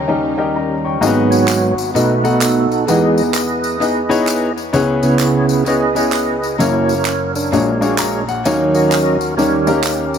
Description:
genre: uptempo gospel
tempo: 129 BPM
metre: 4/4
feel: swing 63% on 8ths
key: unclear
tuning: A4 = 438 Hz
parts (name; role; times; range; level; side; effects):
- warm upright piano; accompaniment; 0.0-10.2 s; F#1 to Db6; -17 LUFS; left 3 dB; dub echo
- rich studio string section; sustained chords; 0.0-1.0 s; Db3 to Eb4; -30 LUFS; right 3 dB; none
- tonewheel organ; sustained chords; 0.1-10.2 s; G#2 to D#5; -16 LUFS; right 3 dB; overdrive, chorus vibrato, slow rotary speaker
- tambourine and handclaps; percussion; 1.0-10.2 s; none; -24 LUFS; right 1 dB; dub echo
room: light reverb, small room ambience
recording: echo-heavy mix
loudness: -13 LUFS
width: side -8 dB against mid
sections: 0.0-1.0 A section; 1.0-10.2 B section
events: upright piano fill 0.0-1.0, 7.8-8.5; tonewheel organ solo 0.0-1.0, 1.0-10.2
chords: 0.0 Eb7; 1.0 G#m7; 2.0 B7; 2.9 Emaj7; 4.7 C#m7; 6.6 F#7; 7.5 A#7alt; 8.5 D#m7; 9.4 D#7

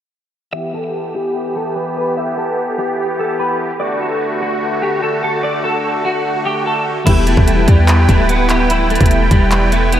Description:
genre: hip hop, trap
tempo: 147 BPM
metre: 4/4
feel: half-time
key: E minor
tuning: A4 = 441 Hz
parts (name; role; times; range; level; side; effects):
- clean electric guitar; melody; 0.5-10.0 s; G3 to E5; -18 LUFS; equal; ensemble chorus, low-pass filter, tape echo
- musette accordion; sustained chords; 0.5-10.0 s; D3 to G5; -20 LUFS; right 1 dB; low-pass filter
- mellow tine electric piano; accompaniment; 7.0-10.0 s; E3 to G4; -20 LUFS; left 4 dB; ensemble chorus, low-pass filter
- hard-hitting 808-style bass; bass; 7.1-10.0 s; D1 to E2; -14 LUFS; equal; none
- trap drum kit; drums; 7.1-10.0 s; crash cymbal, handclaps, hi-hat, kick drum; -15 LUFS; equal; none
room: moderate huge ambient reverb, RT60 7.9 s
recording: dreamy mix soaked in reverb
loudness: -13 LUFS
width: side -11 dB against mid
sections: 0.5-7.1 A section; 7.1-10.0 B section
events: filter sweep 0.5-7.1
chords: 0.5 Em; 3.8 D; 7.1 Em

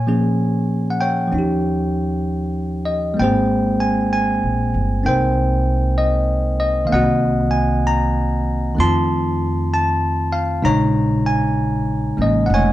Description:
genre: jazz ballad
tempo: 64 BPM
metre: 4/4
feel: swing 66% on 8ths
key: Bb minor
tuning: A4 = 437 Hz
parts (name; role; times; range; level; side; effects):
- bell-like tine electric piano; accompaniment; 0.0-12.7 s; Db3 to C6; -18 LUFS; equal; none
- upright bass; bass; 0.0-12.7 s; F1 to Bb2; -21 LUFS; equal; none
room: moderate studio reverb, RT60 0.7 s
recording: heard from further back in the room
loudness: -16 LUFS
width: side -14 dB against mid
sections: 0.0-12.7 A section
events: none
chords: 0.0 Bbm7; 1.3 Eb9; 3.2 Abmaj9; 6.9 Cm7b5; 8.8 F7; 10.6 Bbm7

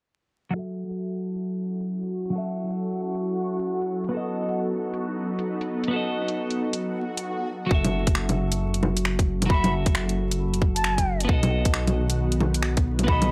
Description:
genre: future garage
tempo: 134 BPM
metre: 4/4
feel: swing 62% on 16ths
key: F# dorian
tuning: A4 = 439 Hz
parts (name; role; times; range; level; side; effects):
- twelve-string electric guitar; accompaniment; 0.5-13.3 s; F#3 to E5; -31 LUFS; equal; sidechain pumping, low-pass filter, tape echo
- backwards swelling texture; texture; 2.0-7.3 s; F#4 to F#5; -39 LUFS; equal; built-in reverb
- ethereal airy pad; sustained chords; 1.8-7.7, 11.9-13.3 s; D#3 to G#5; -35 LUFS; equal; ensemble chorus, built-in reverb, sidechain pumping
- garage drum kit; drums; 0.9-13.3 s; bongos, finger snaps, hi-hat; -29 LUFS; equal; overdrive
- swell; sound effects; 6.9-7.7 s; none; -35 LUFS; equal; none
- dark detuned saw bass; bass; 7.7-13.3 s; F#1 to B1; -28 LUFS; equal; tube saturation, sidechain pumping
- electronic kick drum; drums; 7.7-13.2 s; none; -24 LUFS; equal; overdrive
- wooden flute; melody; 9.5-13.3 s; A5 to B5; -31 LUFS; equal; analog delay
room: light reverb, digital ambience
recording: dry, gritty hardware recording, transformer saturation, vinyl crackle, low-pass filter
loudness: -26 LUFS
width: mono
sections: 0.5-7.7 A section; 7.7-13.3 B section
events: fade-in on ambient pad 0.5-7.7; filter sweep on clean electric guitar 0.5-7.7; filter sweep 0.5-7.7; swell 6.9-7.7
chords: 0.5 F#m7; 4.1 B7; 7.7 F#m7; 11.3 B7

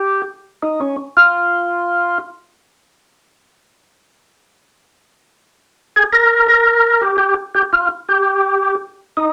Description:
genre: jazz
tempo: 112 BPM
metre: 4/4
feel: swing 67% on 8ths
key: unclear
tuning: A4 = 440 Hz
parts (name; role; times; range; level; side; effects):
- percussive tonewheel organ; solo; 0.0-2.2, 6.0-9.3 s; Db4 to Bb4; -14 LUFS; equal; slow rotary speaker
room: wet studio ambience, RT60 0.5 s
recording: none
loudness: -15 LUFS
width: mono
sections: 0.0-9.3 A section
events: none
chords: none

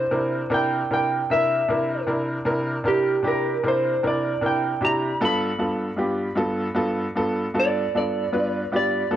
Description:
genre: blues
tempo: 51 BPM (dotted quarters)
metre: 12/8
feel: straight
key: unclear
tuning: A4 = 440 Hz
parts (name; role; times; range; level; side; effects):
- clean lap steel guitar; melody; 0.0-9.2 s; G4 to B5; -23 LUFS; right 1 dB; cassette tape
- bright upright piano; accompaniment; 0.0-9.2 s; G2 to B4; -23 LUFS; equal; cassette tape
room: moderate booth ambience, RT60 0.3 s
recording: home recording on cassette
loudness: -21 LUFS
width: side -11 dB against mid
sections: 0.0-9.2 A section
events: electric slide guitar solo 0.0-9.2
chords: 0.0 C7; 5.2 G7

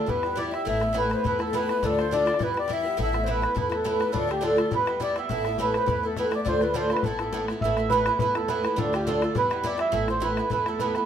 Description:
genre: celtic folk, Celtic reel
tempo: 207 BPM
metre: 4/4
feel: swing 54% on 8ths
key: unclear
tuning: A4 = 439 Hz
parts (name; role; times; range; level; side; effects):
- mellow accordion; melody; 0.0-11.1 s; G4 to E5; -26 LUFS; right 4 dB; none
- wooden flute; second line; 0.0-7.5 s; G4 to E5; -30 LUFS; left 8 dB; none
- picked twelve-string acoustic guitar; accompaniment; 0.0-11.1 s; D2 to F4; -28 LUFS; right 1 dB; none
- upright bass; bass; 0.1-11.0 s; A1 to E2; -34 LUFS; left 1 dB; none
- bodhran; percussion; 0.1-11.0 s; none; -34 LUFS; left 5 dB; none
room: wet studio reverb, RT60 0.8 s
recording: minimal, uncompressed stereo recording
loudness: -23 LUFS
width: side -9 dB against mid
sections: 0.0-7.6 A section; 7.6-11.1 A section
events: none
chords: 0.1 Em; 0.7 Asus2; 1.8 Dm; 2.4 Em; 3.0 Asus2; 4.1 Dm; 4.7 Em; 5.3 Asus2; 6.5 Dm; 7.0 Asus2; 8.8 Dm; 9.4 Em; 9.9 Asus2

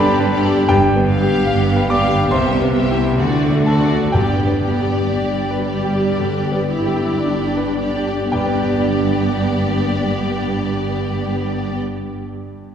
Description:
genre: classical, romantic movement for piano and orchestra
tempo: 54-78 BPM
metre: 4/4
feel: rubato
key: G major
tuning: A4 = 440 Hz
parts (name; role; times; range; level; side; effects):
- bright grand piano; melody; 0.0-12.7 s; C2 to D6; -19 LUFS; left 2 dB; none
- rich symphonic violin section; melody; 0.0-11.8 s; D5 to F5; -28 LUFS; left 2 dB; none
- rich symphonic violin section; second line; 0.0-11.8 s; F#4 to G4; -26 LUFS; left 1 dB; none
- dark symphonic viola section; accompaniment; 0.0-11.8 s; G3 to E4; -23 LUFS; right 1 dB; none
- rich symphonic cello section; bass; 0.0-11.8 s; G2 to D3; -23 LUFS; right 2 dB; none
- rich symphonic double bass section; bass; 0.0-11.8 s; G1 to D2; -25 LUFS; right 1 dB; none
- timpani; percussion; 4.1-11.8 s; G2; -24 LUFS; equal; none
room: wet concert hall reverb, RT60 2.5 s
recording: heard from further back in the room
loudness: -15 LUFS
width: side -8 dB against mid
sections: 0.0-8.3 A section; 8.3-12.5 B section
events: slowing down 0.0-8.3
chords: 0.0 G; 0.7 G7; 2.3 Cmaj7; 3.2 D7; 4.1 G

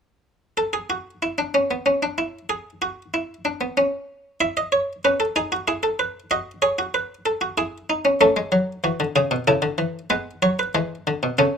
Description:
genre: classical, baroque-style 3-part fugue for harpsichord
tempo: 94 BPM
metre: 3/4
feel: straight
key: A major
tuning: A4 = 440 Hz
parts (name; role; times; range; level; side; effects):
- buff-stop harpsichord; solo; 0.6-11.6 s; B2 to E5; -19 LUFS; equal; none
room: moderate studio reverb, RT60 0.5 s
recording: close, detailed microphones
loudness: -20 LUFS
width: side -6 dB against mid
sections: 0.6-11.6 A section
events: none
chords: 0.6 N.C.; 4.4 E; 6.3 D#dim/F#; 7.6 E; 8.2 A; 9.5 A/C#; 10.1 G#m

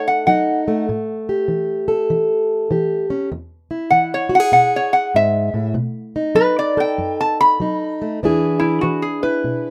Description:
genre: acoustic country blues, solo or duo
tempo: 98 BPM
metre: 4/4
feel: swing 64% on 8ths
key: unclear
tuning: A4 = 439 Hz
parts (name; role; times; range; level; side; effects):
- lap resonator guitar; melody; 0.0-9.7 s; E4 to B5; -18 LUFS; equal; none
- fingerpicked plugged-in steel-string acoustic guitar; accompaniment; 0.0-9.7 s; E2 to A4; -22 LUFS; equal; none
room: light reverb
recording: rough home demo mix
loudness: -18 LUFS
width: mono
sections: 0.0-8.2 A section; 8.2-9.7 B section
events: resonator guitar played with a steel bar solo 0.0-8.2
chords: 0.0 B7 (rootless); 0.9 A7(no3); 3.3 E; 5.8 B7; 8.2 E7

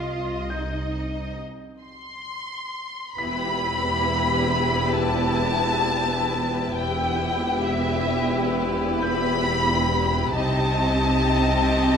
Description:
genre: cinematic, suspense film score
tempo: 67 BPM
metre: 4/4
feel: straight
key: E harmonic minor from 3.2 s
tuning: A4 = 442 Hz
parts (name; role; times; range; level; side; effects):
- warm symphonic violin section; melody; 0.0-12.0 s; Eb5 to C6; -26 LUFS; left 2 dB; none
- rich symphonic cello section; bass; 0.0-12.0 s; E2 to F4; -29 LUFS; right 2 dB; none
- rich symphonic double bass section; bass; 0.0-12.0 s; E1 to C2; -28 LUFS; right 1 dB; none
- bright grand piano; texture; 0.0-12.0 s; G6 to B6; -37 LUFS; left 1 dB; none
- warm symphonic violin section; second line; 3.2-12.0 s; G4 to Eb5; -27 LUFS; left 3 dB; none
- rich symphonic viola section; accompaniment; 3.2-12.0 s; B3 to E4; -28 LUFS; right 1 dB; none
room: moderate scoring stage reverb, RT60 1.7 s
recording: minimal, uncompressed stereo recording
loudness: -21 LUFS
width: side -7 dB against mid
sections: 0.0-3.2 A section; 3.2-12.0 B section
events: break 1.4-3.2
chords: 0.0 Cm; 3.2 Em; 10.4 Cm

